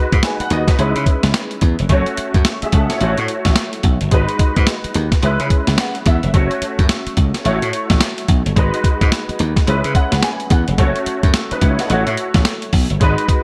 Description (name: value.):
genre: R&B, new jack swing.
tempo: 108 BPM.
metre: 4/4.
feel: swing 62% on 16ths.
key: C# minor.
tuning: A4 = 440 Hz.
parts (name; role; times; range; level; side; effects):
clear baby grand piano; accompaniment; 0.0-13.4 s; G#3 to G#5; -23 LUFS; equal; ensemble chorus.
slap bass; bass; 0.1-13.3 s; E#1 to C#3; -20 LUFS; equal; none.
boom bap sampler-style drum kit; drums; 0.1-13.4 s; hi-hat, kick drum, snare drum; -18 LUFS; equal; none.
room: light reverb, digital ambience.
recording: bright 1980s-style digital production.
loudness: -16 LUFS.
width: mono.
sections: 0.0-13.4 A section.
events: grand piano fill 5.5-6.3, 9.7-10.8.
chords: 0.0 G#m7; 0.8 C#m7; 1.9 F#m; 3.0 A6; 4.1 G#m7; 5.2 C#m7; 6.3 F#m; 7.5 A6; 8.6 G#m7; 9.7 C#m7; 10.8 F#m; 11.9 A6.